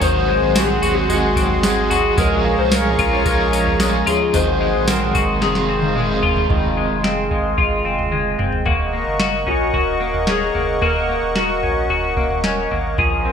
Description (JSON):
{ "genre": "dream pop", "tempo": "111 BPM", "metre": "4/4", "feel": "straight", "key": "unclear", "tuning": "A4 = 439 Hz", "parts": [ { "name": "electric slide guitar", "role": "melody", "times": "0.0-6.2, 9.5-12.7 s", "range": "Gb4 to C5", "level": "-22 LUFS", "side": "left 3 dB", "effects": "lush chorus, ping-pong delay" }, { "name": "overdriven semi-hollow guitar", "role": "accompaniment", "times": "0.0-7.0 s", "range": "Ab2 to Gb4", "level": "-24 LUFS", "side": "right 4 dB", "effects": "tremolo, ensemble chorus" }, { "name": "warm analog pad", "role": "sustained chords", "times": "0.0-13.3 s", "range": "Ab4 to Eb6", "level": "-23 LUFS", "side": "right 2 dB", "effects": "chorus" }, { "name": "semi-hollow electric guitar", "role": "arpeggios", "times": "0.0-13.3 s", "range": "Eb3 to Ab4", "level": "-21 LUFS", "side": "left 3 dB", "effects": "analog chorus, ping-pong delay" }, { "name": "saturated sub bass", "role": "bass", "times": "0.0-13.3 s", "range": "Eb1 to C2", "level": "-26 LUFS", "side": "equal", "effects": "none" }, { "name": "soft vintage rhythm box", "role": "drums", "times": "0.0-13.1 s", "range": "kick drum, snare drum, tambourine, toms", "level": "-22 LUFS", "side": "equal", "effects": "gated reverb" }, { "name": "celesta", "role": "texture", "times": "0.0-10.8 s", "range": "Eb5 to Bb5", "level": "-34 LUFS", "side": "right 2 dB", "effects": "none" } ], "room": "moderate plate reverb, RT60 1.6 s, digital ambience", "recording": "bright 1980s-style digital production", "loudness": "-15 LUFS", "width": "side -7 dB against mid", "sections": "0.0-6.5 A section; 6.5-8.7 B section; 8.7-13.3 C section", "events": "drum fill 5.4-6.5, 8.1-8.7", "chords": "0.0 Ab7; 2.2 Bbm7; 4.3 Ab7; 5.4 Fm7; 8.7 Ebm7" }